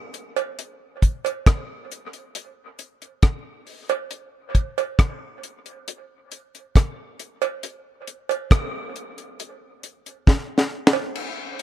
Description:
reggae; 68 BPM; 4/4; straight
deep reggae drum kit; drums; 0.1-11.6 s; crash cymbal, hi-hat, kick drum, rim click, snare drum; -18 LUFS; equal
cowbell; percussion; 0.4-11.1 s; -27 LUFS; right 11 dB; dub echo
little or no reverb; dark, warm production; -20 LUFS; side -13 dB against mid
0.0-11.2 A section
drum fill 10.3-11.2

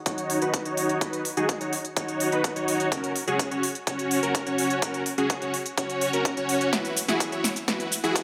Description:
EDM, festival progressive house; 126 BPM; 4/4; straight; B major; A4 = 440 Hz
dense compressed supersaw; riff; 0.1-8.2 s; C#4 to C#5; -28 LUFS; equal; sidechain pumping, low-pass filter, tape echo
big-room dance drum kit; drums; 0.1-8.2 s; hi-hat, shaker, snare drum; -32 LUFS; equal
electronic kick drum; drums; 0.1-8.2 s; -32 LUFS; equal; high-pass filter on kick, high-pass filter on room
moderate concert hall reverb, RT60 2.0 s; high-pass filter; -26 LUFS; mono
0.0-8.2 A section
build-up 0.0-8.2; filter sweep on supersaw synth 0.0-8.2; drum fill 6.7-8.2
0.0 B; 2.9 F#; 6.7 Esus2

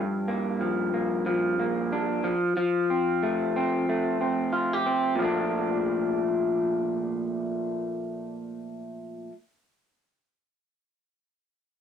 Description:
indie pop; 92 BPM; 4/4; swing 60% on 16ths; Bb major; A4 = 442 Hz
electric guitar through a small old amp; accompaniment; 0.0-9.3 s; G2 to G4; -25 LUFS; equal; wide subtle chorus, warbly pitch drift
light reverb; dry, close 1970s-style studio recording; -24 LUFS; side -8 dB against mid
0.0-5.2 A section; 5.2-7.8 B section
0.0 Gm7; 2.2 Fadd9; 5.2 Bbmaj7

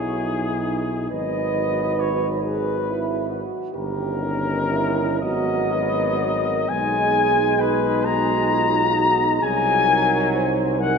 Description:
classical, hymn-like piece for brass band; 40-46 BPM (dotted quarters); 6/8; rubato; A4 = 441 Hz
warm flugelhorn; melody; 0.0-11.0 s; G#4 to A#5; -22 LUFS; left 5 dB
mellow French horn section; second line; 0.0-11.0 s; D#4 to B#4; -25 LUFS; right 6 dB
bright trombone; accompaniment; 0.0-11.0 s; D#3 to G#3; -29 LUFS; right 4 dB
warm euphonium; accompaniment; 0.0-11.0 s; B3 to E4; -29 LUFS; left 2 dB
mellow tuba; bass; 0.0-11.0 s; G1 to B#1; -27 LUFS; right 1 dB
wet cathedral reverb, RT60 4.8 s; -19 LUFS; side -5 dB against mid
0.0-11.0 A section
0.0 B; 1.1 G#m7; 3.8 D#7/G; 5.2 G#m7; 6.7 G#m/B; 9.4 G#7/B#

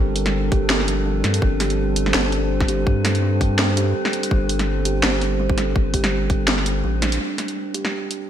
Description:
half-time drum and bass; 166 BPM; 4/4; swing 56% on 16ths, half-time; G minor; A4 = 441 Hz
dark analog pad; sustained chords; 0.0-8.3 s; G3 to C5; -27 LUFS; right 1 dB; chorus, sidechain pumping
kalimba; arpeggios; 0.0-7.9 s; F3 to G4; -28 LUFS; equal; low-pass filter, ping-pong delay
saturated sub bass; bass; 0.0-7.2 s; G1 to G2; -22 LUFS; equal
metallic inharmonic drone; texture; 0.0-8.3 s; C4 to D4; -30 LUFS; equal; chorus, built-in reverb, phaser
drum and bass drum kit; drums; 0.2-8.2 s; hi-hat, snare drum; -23 LUFS; equal; gated reverb
electronic kick drum; drums; 0.5-6.4 s; -20 LUFS; equal
moderate lush hall reverb, RT60 1.9 s, digital ambience; bright 1980s-style digital production; -18 LUFS; side -10 dB against mid
0.0-7.2 A section; 7.2-8.3 B section
drop 0.0-7.2; kick drops out 6.8-7.2; band accent 7.0; filter sweep on kalimba 7.2-8.3
0.0 Gmadd9

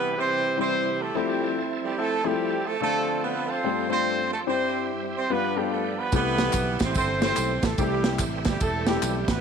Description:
uptempo gospel; 145 BPM; 4/4; swing 63% on 8ths; C major; A4 = 440 Hz
mellow horn section; melody; 0.0-9.4 s; G3 to C5; -25 LUFS; right 2 dB; tape echo
warm upright piano; accompaniment; 0.0-9.2 s; G2 to C5; -29 LUFS; left 13 dB
bright tonewheel organ; sustained chords; 0.0-9.4 s; C3 to A4; -34 LUFS; right 12 dB; slow rotary speaker, chorus vibrato
fingered electric bass; bass; 6.1-9.4 s; E1 to C2; -30 LUFS; right 1 dB
tight funk drum kit; drums; 6.1-9.4 s; kick drum, ride cymbal, snare drum; -27 LUFS; right 2 dB
tambourine and handclaps; percussion; 6.1-9.4 s; -36 LUFS; left 1 dB
light reverb, small room ambience; 1960s-style stereo with parts hard left and right; -23 LUFS; side -6 dB against mid
0.0-9.4 A section
0.0 Cmaj7; 1.1 Fmaj7; 2.8 Dm7; 3.6 G9sus4; 4.5 C/G; 5.3 G7; 6.1 C6; 7.8 Am7

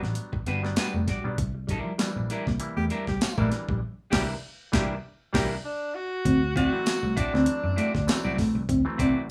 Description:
funk; 98 BPM; 4/4; swing 56% on 16ths; D mixolydian; A4 = 440 Hz
clean electric guitar; accompaniment; 0.0-9.2 s; G3 to D5; -35 LUFS; equal
mellow clav; stabs; 0.0-9.3 s; E3 to E4; -37 LUFS; equal
vintage muted picked electric bass; bass; 0.0-9.1 s; F1 to F#2; -32 LUFS; equal
breakbeat sampler-style drum kit; drums; 0.0-9.2 s; crash cymbal, hi-hat, kick drum, snare drum; -31 LUFS; equal
mellow electric guitar; riff; 0.5-9.1 s; F3 to C4; -30 LUFS; equal; analog chorus
tambourine; percussion; 0.8-8.2 s; -44 LUFS; equal
breathy tenor saxophone; second line; 2.8-5.5 s; G4; -35 LUFS; equal
breathy alto saxophone; melody; 5.7-8.4 s; D4 to F#4; -32 LUFS; equal
light reverb; rough home demo mix, small room ambience; -27 LUFS; mono
0.0-6.3 A section; 6.3-9.3 B section
band accent 3.8-6.3
0.0 Em9 (rootless); 1.4 C9; 6.3 D9

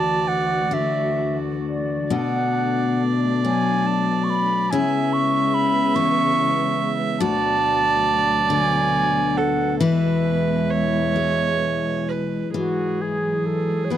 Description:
celtic folk, Celtic slow air; 43-49 BPM (dotted quarters); 6/8; rubato; E mixolydian; A4 = 440 Hz
mellow wooden flute; melody; 0.0-14.0 s; F#4 to C#6; -23 LUFS; right 2 dB
clear viola; second line; 0.0-14.0 s; G#4 to E5; -26 LUFS; right 7 dB
picked steel-string acoustic guitar; accompaniment; 0.0-14.0 s; D2 to F#4; -23 LUFS; left 5 dB
muted studio string section; sustained chords; 0.0-14.0 s; D2 to F#4; -27 LUFS; right 3 dB
light reverb; dry, close 1970s-style studio recording; -18 LUFS; side -11 dB against mid
0.0-12.5 A section; 12.5-14.0 B section
0.0 D; 2.1 Bm7; 4.7 C#m7; 7.2 D6; 9.8 E; 12.5 Eadd9

